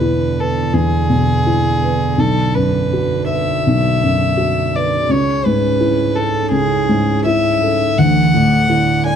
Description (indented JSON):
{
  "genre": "neoclassical piano and strings",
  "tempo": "83 BPM",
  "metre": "4/4",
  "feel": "rubato",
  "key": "B dorian",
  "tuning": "A4 = 440 Hz",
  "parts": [
    { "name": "warm violin", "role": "melody", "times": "0.0-9.2 s", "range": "G#4 to G#5", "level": "-18 LUFS", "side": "left 2 dB", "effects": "none" },
    { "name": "dark cello", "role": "second line", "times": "0.0-9.2 s", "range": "C#3 to E3", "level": "-21 LUFS", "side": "right 13 dB", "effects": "none" },
    { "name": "felt-muted upright piano", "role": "accompaniment", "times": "0.0-9.2 s", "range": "B1 to D5", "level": "-16 LUFS", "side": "left 1 dB", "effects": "none" }
  ],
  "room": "light reverb",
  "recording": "dark, warm production",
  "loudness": "-13 LUFS",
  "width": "side -8 dB against mid",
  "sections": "0.0-9.2 A section",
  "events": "none",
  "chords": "0.0 E7; 2.2 Bm; 5.1 Amaj7/C#; 8.0 Dsus2"
}